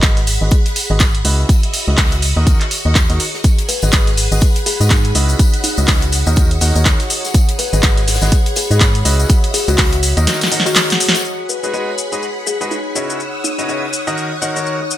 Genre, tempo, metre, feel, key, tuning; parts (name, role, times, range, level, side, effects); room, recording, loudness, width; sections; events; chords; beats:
piano house; 123 BPM; 4/4; swing 58% on 16ths; G# minor; A4 = 440 Hz
string machine, violins; sustained chords; 0.0-15.0 s; F#4 to E6; -25 LUFS; left 1 dB; ensemble chorus, sidechain pumping
bright upright piano; riff; 0.0-14.8 s; C#3 to F#5; -24 LUFS; equal; sidechain pumping, low-pass filter, ping-pong delay
organ-like FM bass; bass; 0.0-10.3 s; G#1 to G#2; -15 LUFS; equal; sidechain pumping
electronic kick drum; drums; 0.0-9.9 s; -13 LUFS; equal
natural country drum kit; drums; 0.0-15.0 s; hi-hat, snare drum, tambourine; -27 LUFS; left 4 dB; sidechain pumping on hats, high-pass filter on hats, low-pass filter on hats, high-pass filter on snare, low-pass filter on snare, sidechain pumping on perc, high-pass filter on perc, low-pass filter on perc, high-pass filter on room, low-pass filter on room
punchy analog drum machine; drums; 0.0-15.0 s; handclaps, hi-hat, shaker, snare drum; -17 LUFS; equal
warbly tape-like pad; texture; 0.3-15.0 s; D#4 to B5; -29 LUFS; equal; chorus, built-in reverb, sidechain pumping
tambourine; percussion; 3.4-11.2 s; -30 LUFS; left 5 dB
kalimba; melody; 3.7-13.9 s; D#4 to B4; -24 LUFS; left 3 dB; ping-pong delay
small room ambience; -12 LUFS; side -13 dB against mid
0.0-11.2 A section; 11.2-15.0 B section
drum fill 10.3-11.2
0.0 G#m7; 1.2 C#m11; 2.5 D#m7; 3.4 G#m7; 5.2 C#m11; 6.4 D#m7; 7.3 G#m7; 9.1 C#m11; 10.3 D#m7; 11.2 G#m7; 13.0 C#m11; 14.2 D#m7
0.03 0.52 1.00 | 1.49 1.98 2.47 2.96 | 3.44 3.93 4.42 4.91 | 5.39 5.88 6.37 6.86 | 7.34 7.83 8.32 8.81 | 9.30 9.78 10.27 10.76 | 11.25 11.73 12.22 12.71 | 13.20 13.69 14.17 14.66